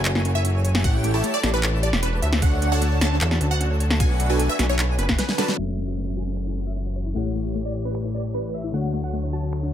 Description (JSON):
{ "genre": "future bass", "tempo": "152 BPM", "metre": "4/4", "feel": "half-time", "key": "unclear", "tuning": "A4 = 440 Hz", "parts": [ { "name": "clear studio string section", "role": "sustained chords", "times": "0.0-9.7 s", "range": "D3 to C#5", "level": "-36 LUFS", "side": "equal", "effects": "sidechain pumping, low-pass filter" }, { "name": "airy dreamy lead", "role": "arpeggios", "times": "0.0-5.6 s", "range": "F#5 to A5", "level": "-34 LUFS", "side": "equal", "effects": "chorus, sidechain pumping" }, { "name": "supersaw stab", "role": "riff", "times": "0.0-5.6 s", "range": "D4 to A5", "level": "-29 LUFS", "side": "right 2 dB", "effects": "sidechain pumping" }, { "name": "fat analog bass", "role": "bass", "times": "0.0-9.7 s", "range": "E1 to E2", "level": "-23 LUFS", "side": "equal", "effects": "sidechain pumping" }, { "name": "wide unison pluck", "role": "arpeggios", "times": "0.1-9.7 s", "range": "A3 to C#5", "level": "-35 LUFS", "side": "left 3 dB", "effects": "none" }, { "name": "pop drum kit", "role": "drums", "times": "0.1-9.6 s", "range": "crash cymbal, finger snaps, handclaps, hi-hat, snare drum", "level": "-25 LUFS", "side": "equal", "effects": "small room ambience" }, { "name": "wide unison pluck", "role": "melody", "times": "0.3-9.5 s", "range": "B4 to A5", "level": "-30 LUFS", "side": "right 1 dB", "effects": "phaser, sidechain pumping, dub echo" }, { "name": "electronic kick drum", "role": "drums", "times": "0.8-5.2 s", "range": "none", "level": "-21 LUFS", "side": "equal", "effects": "small room ambience" }, { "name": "tine electric piano", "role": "accompaniment", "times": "5.6-9.7 s", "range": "D3 to E5", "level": "-30 LUFS", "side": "left 5 dB", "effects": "lush chorus, sidechain pumping" }, { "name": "downlifter", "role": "sound effects", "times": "5.8-8.7 s", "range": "none", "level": "-40 LUFS", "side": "right 3 dB", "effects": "none" } ], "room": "digital ambience", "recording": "low-pass filter", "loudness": "-20 LUFS", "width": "side -10 dB against mid", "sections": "0.0-5.6 A section; 5.6-9.7 B section", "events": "drop 0.0-5.6; drum fill 5.2-5.6; band accent 5.5; filter sweep on synth arpeggio sound 5.6-9.7; filter sweep on string section 5.6-9.7; filter sweep 5.6-9.7", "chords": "0.0 F#m7; 0.8 A7; 2.4 Dmaj7; 4.0 Bm7; 5.6 F#m7; 7.2 A7; 8.7 Dmaj7" }